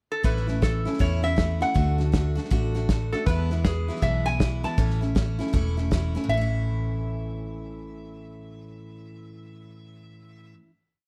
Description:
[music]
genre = honky-tonk and classic country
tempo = 159 BPM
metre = 4/4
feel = swing 62% on 8ths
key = A major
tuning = A4 = 440 Hz
[part]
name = lap resonator guitar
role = melody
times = 0.1-10.5 s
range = G#4 to A5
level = -32 LUFS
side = equal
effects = none
[part]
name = picked steel-string acoustic guitar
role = accompaniment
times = 0.2-10.7 s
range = E2 to F#4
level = -34 LUFS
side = equal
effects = none
[part]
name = vintage muted fingered electric bass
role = bass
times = 0.2-10.5 s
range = E1 to E2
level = -29 LUFS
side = equal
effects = none
[part]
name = damped 70s drum kit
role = drums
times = 0.2-6.2 s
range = hi-hat, kick drum, snare drum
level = -28 LUFS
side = equal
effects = none
[sound]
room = little or no reverb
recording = dark, warm production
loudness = -25 LUFS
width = mono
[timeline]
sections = 0.0-0.2 pickup bar; 0.2-6.3 A section; 6.3-9.3 final chord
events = none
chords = 0.2 A; 1.8 D; 3.3 E; 4.8 A

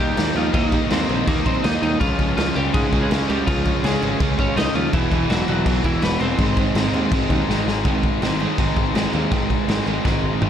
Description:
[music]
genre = punk rock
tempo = 164 BPM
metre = 4/4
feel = straight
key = Ab major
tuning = A4 = 440 Hz
[part]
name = lightly driven lead guitar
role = melody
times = 0.0-7.4 s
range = E3 to Eb5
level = -24 LUFS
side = left 1 dB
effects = ping-pong delay
[part]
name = fuzz guitar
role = riff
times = 0.0-10.5 s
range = Ab2 to F4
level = -27 LUFS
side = left 1 dB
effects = distortion
[part]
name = overdriven electric guitar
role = riff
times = 0.0-10.5 s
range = E2 to Eb4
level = -25 LUFS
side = right 12 dB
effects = none
[part]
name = tight distorted guitar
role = riff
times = 0.0-10.5 s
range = E2 to Eb4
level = -27 LUFS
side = left 17 dB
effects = distortion
[part]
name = modern bright picked electric bass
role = bass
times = 0.0-10.5 s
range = E1 to Ab2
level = -26 LUFS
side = equal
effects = none
[part]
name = raw garage drum kit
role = drums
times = 0.2-10.5 s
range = crash cymbal, kick drum, snare drum, toms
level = -22 LUFS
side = equal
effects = none
[sound]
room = little or no reverb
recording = none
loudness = -17 LUFS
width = side -9 dB against mid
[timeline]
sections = 0.0-7.9 A section; 7.9-10.5 B section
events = drum fill 7.5-7.9, 10.1-10.5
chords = 0.0 Eb; 2.0 Db; 4.9 E; 6.4 Ab

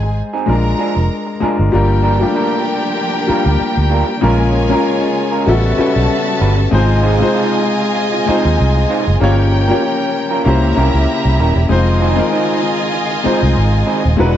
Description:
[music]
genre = soul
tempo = 96 BPM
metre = 4/4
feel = swing 54% on 16ths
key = unclear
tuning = A4 = 440 Hz
[part]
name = warm studio violin section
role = second line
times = 0.0-14.4 s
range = Db4 to Bb5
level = -20 LUFS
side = equal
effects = none
[part]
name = warm grand piano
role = accompaniment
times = 0.0-14.4 s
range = G3 to Db5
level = -17 LUFS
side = left 3 dB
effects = none
[part]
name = electric guitar through a small old amp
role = riff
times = 0.0-14.4 s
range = F3 to C5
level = -22 LUFS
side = right 6 dB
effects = none
[part]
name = vintage muted fingered electric bass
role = bass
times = 0.0-14.4 s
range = Eb1 to Eb2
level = -14 LUFS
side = equal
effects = none
[part]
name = vibraphone with medium hard mallets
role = texture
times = 0.0-14.4 s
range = F#4 to Ab5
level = -26 LUFS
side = right 3 dB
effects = none
[part]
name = rich studio string section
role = sustained chords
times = 1.7-14.4 s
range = C3 to G5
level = -24 LUFS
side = right 1 dB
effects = none
[sound]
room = light reverb, small room ambience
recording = dark, warm production, nothing above 7.8 kHz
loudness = -12 LUFS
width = side -10 dB against mid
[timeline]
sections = 0.0-1.7 A section; 1.7-14.4 B section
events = none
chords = 0.5 Bb7; 1.7 Gm7; 4.2 Bbm7; 5.5 A13; 6.7 Ab6; 9.2 Gm7b5; 10.5 C7b9; 11.7 Fm7

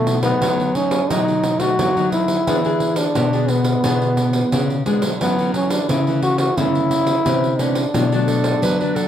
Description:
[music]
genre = samba and choro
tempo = 88 BPM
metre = 4/4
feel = straight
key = unclear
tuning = A4 = 440 Hz
[part]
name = growling trombone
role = melody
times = 0.0-9.1 s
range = A3 to F#4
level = -20 LUFS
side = equal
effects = none
[part]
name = nylon-string guitar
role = accompaniment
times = 0.0-9.1 s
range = F#2 to G#4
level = -24 LUFS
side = left 2 dB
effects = none
[part]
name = nylon-string guitar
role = bass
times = 0.0-9.1 s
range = B2 to G#3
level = -21 LUFS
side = left 1 dB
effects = none
[part]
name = pandeiro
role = percussion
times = 0.1-9.1 s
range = none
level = -23 LUFS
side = right 2 dB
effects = none
[part]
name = clear clarinet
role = second line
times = 8.3-9.1 s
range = A4 to B4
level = -24 LUFS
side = right 4 dB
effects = none
[sound]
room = light reverb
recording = none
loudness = -16 LUFS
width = side -10 dB against mid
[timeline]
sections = 0.0-9.1 A section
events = none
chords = 0.0 B7; 2.5 E7; 5.2 F#m7; 7.9 Bm7

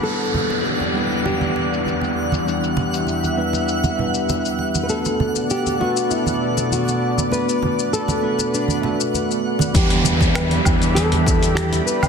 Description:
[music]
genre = sunset chillout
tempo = 99 BPM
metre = 4/4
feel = straight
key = E minor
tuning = A4 = 436 Hz
[part]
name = nylon-string guitar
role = melody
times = 0.0-12.1 s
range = D4 to B4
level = -25 LUFS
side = left 1 dB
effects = tape echo
[part]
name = tine electric piano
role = accompaniment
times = 0.0-12.1 s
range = G3 to D5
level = -24 LUFS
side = equal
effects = auto-pan, tape echo
[part]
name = lush unison pad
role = sustained chords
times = 0.0-12.1 s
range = E2 to B5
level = -25 LUFS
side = equal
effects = chorus
[part]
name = congas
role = percussion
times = 0.0-12.1 s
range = none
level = -26 LUFS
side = right 3 dB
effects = none
[part]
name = downlifter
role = sound effects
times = 0.0-4.9, 9.7-12.1 s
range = none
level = -26 LUFS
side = right 1 dB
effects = none
[part]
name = twinkling granular texture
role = texture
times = 0.0-9.8 s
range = F#5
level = -29 LUFS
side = left 1 dB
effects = built-in reverb
[part]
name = dusty soul sampler-style drum kit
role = drums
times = 0.1-12.1 s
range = finger snaps, hi-hat, shaker, woodblock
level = -27 LUFS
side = left 5 dB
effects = low-pass filter on hats, low-pass filter on perc, soft clipping on snare, low-pass filter on snare, low-pass filter on room
[part]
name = fretless electric bass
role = bass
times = 9.7-11.8 s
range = E2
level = -20 LUFS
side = equal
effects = tube saturation, analog chorus
[part]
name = electronic kick drum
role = drums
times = 9.7-11.4 s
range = none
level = -20 LUFS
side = equal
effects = overdrive
[sound]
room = moderate lush hall reverb, RT60 1.9 s, digital ambience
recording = dense, heavily limited modern master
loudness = -17 LUFS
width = side -6 dB against mid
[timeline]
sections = 0.0-9.7 A section; 9.7-12.1 B section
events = none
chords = 0.0 Em7; 4.9 Bm7; 9.7 Em7

